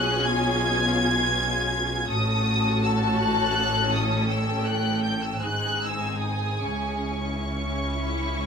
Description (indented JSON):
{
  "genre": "classical, slow romantic movement for string orchestra",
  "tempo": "47-56 BPM (dotted quarters)",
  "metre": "12/8",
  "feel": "rubato",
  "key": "C# minor",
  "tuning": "A4 = 440 Hz",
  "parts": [
    { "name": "rich studio violin section", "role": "melody", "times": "0.0-8.5 s", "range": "C#6 to G#6", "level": "-27 LUFS", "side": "equal", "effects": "none" },
    { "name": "rich studio violin section", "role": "second line", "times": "0.0-8.5 s", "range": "E4 to A5", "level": "-29 LUFS", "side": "left 2 dB", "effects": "none" },
    { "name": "rich studio viola section", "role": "accompaniment", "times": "0.0-8.5 s", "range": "B#3 to A4", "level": "-30 LUFS", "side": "left 2 dB", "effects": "none" },
    { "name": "rich studio double bass section", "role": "bass", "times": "0.0-8.5 s", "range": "G#1 to C#2", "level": "-29 LUFS", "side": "right 1 dB", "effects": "none" },
    { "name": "warm studio cello section", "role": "bass", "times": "0.0-8.5 s", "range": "G#2 to C#3", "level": "-29 LUFS", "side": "equal", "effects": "none" }
  ],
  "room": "moderate studio ambience, RT60 0.5 s",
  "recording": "minimal, uncompressed stereo recording",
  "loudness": "-22 LUFS",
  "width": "side -6 dB against mid",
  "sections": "0.0-8.5 A section",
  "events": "none",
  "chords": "0.0 C#7/B; 2.1 F#m/A; 4.3 A7; 5.4 G#; 6.6 C#m",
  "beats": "0.99 | 2.10 3.19 4.30 5.42 | 6.64 7.91"
}